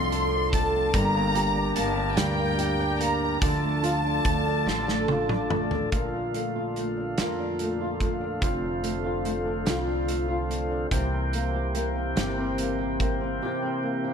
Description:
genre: six-eight pop ballad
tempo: 48 BPM (dotted quarters)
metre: 6/8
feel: straight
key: unclear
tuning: A4 = 441 Hz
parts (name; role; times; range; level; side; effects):
- warm studio violin section; second line; 0.0-5.5 s; G5 to C6; -29 LUFS; left 1 dB; none
- flamenco guitar; accompaniment; 0.0-14.1 s; F2 to A4; -28 LUFS; equal; double-tracked left and right
- tonewheel organ; sustained chords; 0.0-14.1 s; Bb2 to Bb4; -31 LUFS; right 1 dB; slow rotary speaker
- upright bass; bass; 0.0-13.4 s; F1 to F2; -31 LUFS; equal; none
- loose indie drum kit; drums; 0.1-13.2 s; hi-hat, kick drum, snare drum, toms; -29 LUFS; right 1 dB; none
room: light reverb, studio reverb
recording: none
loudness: -24 LUFS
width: side -7 dB against mid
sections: 0.0-5.9 A section; 5.9-14.1 B section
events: drum fill 4.7-5.9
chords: 0.0 F; 0.9 Gm; 3.4 Dm; 5.9 Bbmaj7; 8.4 F6; 10.9 C7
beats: | 0.94 2.18 | 3.42 4.67 | 5.93 7.18 | 8.42 9.67 | 10.91 12.16 | 13.42

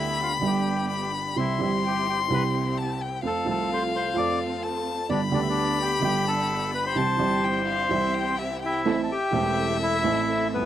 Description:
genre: tango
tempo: 128 BPM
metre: 4/4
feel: rubato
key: C major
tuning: A4 = 440 Hz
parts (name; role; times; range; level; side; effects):
- bandoneon; melody; 0.0-10.7 s; B3 to D6; -26 LUFS; left 2 dB; none
- warm violin; second line; 0.0-10.7 s; E5 to C6; -29 LUFS; left 6 dB; none
- warm baby grand piano; accompaniment; 0.0-10.7 s; E1 to A4; -27 LUFS; right 4 dB; none
- warm symphonic string section; stabs; 0.0-10.7 s; B3 to A4; -33 LUFS; right 1 dB; none
room: light reverb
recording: dry, close 1970s-style studio recording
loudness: -23 LUFS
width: side -11 dB against mid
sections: 0.0-8.9 A section; 8.9-10.7 B section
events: none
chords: 0.0 G; 1.4 C; 3.2 F; 5.1 G; 7.0 C; 8.9 Am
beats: 0.42 0.90 | 1.37 1.84 2.31 2.77 | 3.24 3.71 4.17 4.63 | 5.10 5.57 6.03 6.50 | 6.97 7.44 7.91 8.39 | 8.87 9.34 9.81 10.27

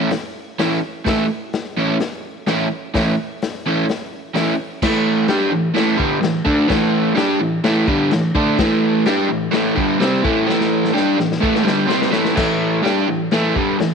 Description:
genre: garage rock duo or trio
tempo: 127 BPM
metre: 4/4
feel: straight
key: A mixolydian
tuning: A4 = 440 Hz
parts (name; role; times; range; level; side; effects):
- crunchy overdriven guitar; riff; 0.0-13.9 s; G2 to G4; -16 LUFS; right 1 dB; none
- vintage drum kit; drums; 0.1-13.9 s; crash cymbal, hi-hat, kick drum, snare drum; -24 LUFS; left 4 dB; none
room: moderate echo chamber reverb, RT60 2.1 s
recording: 1960s-style stereo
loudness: -16 LUFS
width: side -6 dB against mid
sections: 0.0-4.8 A section; 4.8-12.4 B section; 12.4-13.9 C section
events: drum fill 10.5-12.4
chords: 0.0 A; 4.8 A5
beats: 0.12 0.59 | 1.06 1.53 2.00 2.47 | 2.94 3.41 3.88 4.35 | 4.82 5.29 5.76 6.23 | 6.70 7.17 7.65 8.12 | 8.59 9.06 9.53 10.01 | 10.48 10.95 11.43 11.90 | 12.38 12.85 13.33 13.80

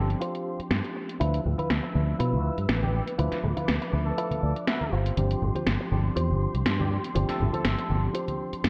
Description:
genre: filtered disco house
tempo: 121 BPM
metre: 4/4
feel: swing 54% on 16ths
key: unclear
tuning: A4 = 440 Hz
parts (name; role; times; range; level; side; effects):
- bright horn section; melody; 0.0-8.0 s; G3 to B4; -39 LUFS; equal; low-pass filter, delay
- tine electric piano; accompaniment; 0.0-8.7 s; F3 to E5; -36 LUFS; equal; phaser, low-pass filter
- dark symphonic string section; sustained chords; 0.0-8.7 s; G4 to E6; -41 LUFS; equal; low-pass filter
- fingered electric bass; bass; 0.0-8.7 s; G1 to B2; -29 LUFS; equal; low-pass filter
- house drum kit; drums; 0.1-8.7 s; hi-hat, snare drum; -33 LUFS; equal; low-pass filter on hats, low-pass filter on snare, low-pass filter on room, gated reverb
- direct-recorded clean electric guitar; riff; 0.2-8.5 s; E4 to F5; -37 LUFS; equal; vintage 12-bit sampler grit, low-pass filter
- tambourine and congas; percussion; 1.2-8.7 s; none; -36 LUFS; equal; none
room: light reverb, small room ambience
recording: bright 1980s-style digital production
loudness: -27 LUFS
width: mono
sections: 0.0-8.7 A section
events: filter sweep 0.0-8.7; clean electric guitar fill 4.2-5.2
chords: 0.0 G7sus4; 1.2 Dm69; 4.9 G7sus4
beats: 0.21 0.71 | 1.21 1.70 2.20 2.69 | 3.19 3.69 4.18 4.68 | 5.17 5.67 6.17 6.66 | 7.16 7.65 8.15 8.64

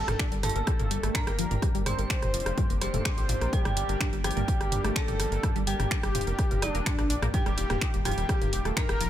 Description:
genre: melodic techno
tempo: 126 BPM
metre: 4/4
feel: straight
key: G minor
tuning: A4 = 440 Hz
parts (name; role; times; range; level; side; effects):
- fat analog lead; melody; 0.0-9.1 s; D4 to C5; -34 LUFS; equal; lush chorus, sidechain pumping, digital delay
- dark detuned synth bell; second line; 0.0-9.1 s; D5 to C6; -39 LUFS; right 3 dB; chorus, tremolo, sidechain pumping, tape echo
- lush unison pad; sustained chords; 0.0-9.1 s; Eb3 to G4; -40 LUFS; equal; chorus, sidechain pumping
- tight sequenced synth; arpeggios; 0.0-9.1 s; F3 to G5; -36 LUFS; equal; chorus, phaser, sidechain pumping, tape echo
- round analog bass; bass; 0.0-9.1 s; Eb1 to Bb1; -32 LUFS; equal; sidechain pumping
- techno drum kit; drums; 0.1-9.1 s; finger snaps, hi-hat, rim click, toms; -32 LUFS; right 1 dB; none
- electronic kick drum; drums; 0.2-8.9 s; none; -29 LUFS; equal; none
room: light reverb, digital ambience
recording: none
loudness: -25 LUFS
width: side -11 dB against mid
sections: 0.0-9.1 A section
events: none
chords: 0.0 Gmadd9; 7.3 Eb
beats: 0.20 0.67 1.15 | 1.62 2.10 2.58 3.05 | 3.53 4.00 4.48 4.96 | 5.43 5.91 6.39 6.86 | 7.34 7.82 8.29 8.77

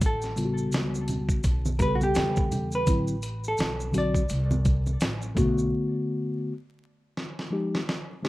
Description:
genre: hip hop, jazz-hop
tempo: 84 BPM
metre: 4/4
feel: swing 60% on 16ths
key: unclear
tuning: A4 = 440 Hz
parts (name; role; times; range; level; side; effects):
- upright bass; bass; 0.0-5.7 s; A1 to E2; -30 LUFS; equal; none
- dusty soul sampler-style drum kit; drums; 0.0-8.3 s; hi-hat, kick drum, snare drum; -27 LUFS; equal; none
- maracas and congas; percussion; 0.0-5.7 s; none; -34 LUFS; right 2 dB; none
- vintage hollow-body jazz guitar; melody; 0.1-7.8 s; F#4 to D5; -30 LUFS; right 1 dB; tape echo
- mellow tine electric piano; accompaniment; 0.4-8.3 s; C#3 to A4; -27 LUFS; left 1 dB; none
room: digital ambience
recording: rough home demo mix, vinyl crackle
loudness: -24 LUFS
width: side -18 dB against mid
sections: 0.0-8.3 A section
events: break 5.7-8.3; drum fill 7.2-8.3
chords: 0.0 A13; 2.9 D7/A; 5.4 Bm7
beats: | 0.01 0.72 1.44 2.15 | 2.87 3.58 4.30 5.01 | 5.72 6.44 7.15 7.87

